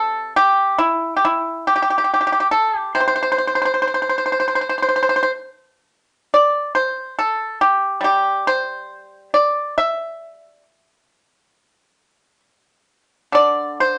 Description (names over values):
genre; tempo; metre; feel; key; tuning
chinese traditional, Chinese solo plucked strings; 69 BPM; 4/4; rubato; C gong mode; A4 = 440 Hz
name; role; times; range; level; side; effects
pipa; solo; 0.0-14.0 s; C3 to E5; -18 LUFS; equal; none
room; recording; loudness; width
moderate studio reverb, RT60 0.6 s; nothing above 10.4 kHz; -18 LUFS; mono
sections
0.0-14.0 A section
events
none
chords
none